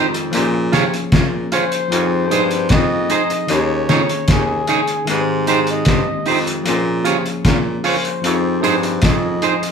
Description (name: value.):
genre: lovers rock reggae.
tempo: 76 BPM.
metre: 4/4.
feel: straight.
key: F minor.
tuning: A4 = 440 Hz.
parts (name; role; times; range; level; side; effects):
breathy flugelhorn; melody; 0.0-9.7 s; Ab4 to Eb5; -22 LUFS; left 2 dB; none.
bell-like tine electric piano; accompaniment; 0.0-9.7 s; Eb3 to G5; -23 LUFS; left 5 dB; none.
clean electric guitar; stabs; 0.0-9.7 s; Eb4 to Db5; -20 LUFS; right 6 dB; dub echo.
warm baritone saxophone; bass; 0.0-9.6 s; Eb2 to C3; -22 LUFS; right 2 dB; none.
cloth-damped thuddy drum kit; drums; 0.1-9.7 s; hi-hat, kick drum, snare drum; -18 LUFS; left 1 dB; none.
room: wet large studio reverb, RT60 0.8 s.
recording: band playing live in one room.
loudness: -14 LUFS.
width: side -6 dB against mid.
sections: 0.0-9.7 A section.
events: none.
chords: 0.3 Bbm7; 1.9 Fm7; 3.5 Eb7sus4; 5.1 Abmaj7; 6.7 Bbm7; 8.2 Fm7.